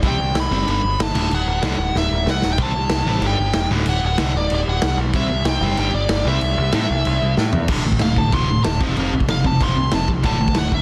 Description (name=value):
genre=punk rock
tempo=188 BPM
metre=4/4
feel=straight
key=unclear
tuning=A4 = 444 Hz
part: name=overdriven electric guitar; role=riff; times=0.0-10.8 s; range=D2 to C4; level=-24 LUFS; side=equal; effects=none
part: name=growling picked electric bass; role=bass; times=0.0-10.8 s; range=D1 to A2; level=-24 LUFS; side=equal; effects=overdrive
part: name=raw garage drum kit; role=drums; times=0.0-10.8 s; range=crash cymbal, kick drum, snare drum, toms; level=-24 LUFS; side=equal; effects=none
part: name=bluesy overdriven lead guitar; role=melody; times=0.1-10.8 s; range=D5 to C6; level=-26 LUFS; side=equal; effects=distortion, delay
room=little or no reverb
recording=dense, heavily limited modern master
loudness=-19 LUFS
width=mono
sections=0.0-7.7 A section; 7.7-10.8 B section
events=drum fill 1.9-2.6, 7.4-7.7; lead electric guitar solo 7.7-10.8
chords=0.0 C5; 0.7 G; 1.2 D; 2.6 C5; 3.2 G5; 3.7 D; 5.1 C; 5.8 G5; 6.3 C; 7.7 D5; 8.8 F5; 10.2 D5